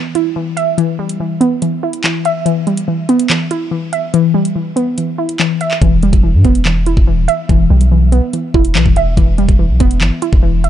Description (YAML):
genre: hip hop, drill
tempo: 143 BPM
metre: 4/4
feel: half-time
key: E minor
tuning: A4 = 442 Hz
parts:
  - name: warbly dusty pluck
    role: accompaniment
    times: 0.0-10.7 s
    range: E3 to E5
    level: -14 LUFS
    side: equal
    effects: chorus, phaser, low-pass filter
  - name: drill drum kit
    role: drums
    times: 0.2-10.7 s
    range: handclaps, hi-hat, kick drum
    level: -14 LUFS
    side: equal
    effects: none
  - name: long sustained 808-style bass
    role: bass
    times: 5.8-10.7 s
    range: D#1 to G2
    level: -12 LUFS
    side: equal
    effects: none
room: digital ambience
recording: dark, warm production, nothing above 10.9 kHz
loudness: -11 LUFS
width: side -11 dB against mid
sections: 0.0-10.7 A section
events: break 0.0-5.8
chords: 0.0 Em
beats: 0.36 | 0.78 1.20 1.62 2.04 | 2.46 2.88 3.30 3.72 | 4.14 4.56 4.98 5.40 | 5.82 6.24 6.66 7.07 | 7.49 7.91 8.33 8.75 | 9.17 9.59 10.01 10.43